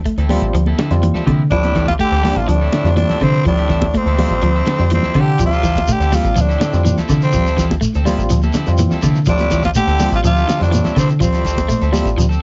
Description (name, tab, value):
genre	afrobeat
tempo	124 BPM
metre	4/4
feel	straight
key	D minor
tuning	A4 = 437 Hz
part	metallic FM bass	bass	0.0-12.4 s	A1 to D3	-19 LUFS	equal	none
part	electric guitar at the edge of break-up	arpeggios	0.1-12.4 s	C3 to A3	-23 LUFS	equal	analog delay
part	cloth-damped thuddy drum kit	drums	0.1-12.3 s	hi-hat, kick drum, snare drum	-26 LUFS	equal	cassette tape
part	electric guitar at the edge of break-up	stabs	0.2-12.4 s	F3 to A4	-32 LUFS	equal	none
part	overdriven tine electric piano	accompaniment	0.3-12.3 s	G3 to F4	-27 LUFS	equal	fast tremolo
part	congas	percussion	0.3-12.1 s	none	-26 LUFS	equal	none
part	growling tenor saxophone	melody	1.5-11.9 s	C4 to G4	-22 LUFS	equal	cassette tape
part	trombone with metal mute	second line	1.5-11.9 s	F2 to D3	-30 LUFS	equal	none
part	shekere	percussion	5.4-12.4 s	none	-26 LUFS	equal	none
room	light reverb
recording	home recording on cassette, nothing above 7.7 kHz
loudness	-15 LUFS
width	mono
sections	0.0-12.4 A section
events	none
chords	0.0 Dm9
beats	0.06 0.54 1.03 | 1.52 2.00 2.49 2.97 | 3.46 3.94 4.43 4.92 | 5.40 5.88 6.37 6.85 | 7.34 7.82 8.31 8.79 | 9.28 9.76 10.24 10.73 | 11.21 11.70 12.18